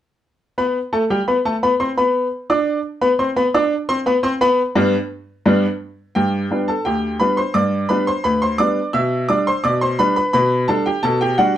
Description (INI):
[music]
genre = ragtime piano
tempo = 86 BPM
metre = 2/4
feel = straight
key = G major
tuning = A4 = 445 Hz
[part]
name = bright upright piano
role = solo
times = 0.6-11.6 s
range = D2 to E6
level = -16 LUFS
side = equal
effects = none
[sound]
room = moderate small room reverb, RT60 0.5 s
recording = none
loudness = -16 LUFS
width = side -11 dB against mid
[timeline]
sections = 0.6-6.2 A section; 6.2-11.6 B section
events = none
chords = 0.6 G; 8.9 G/B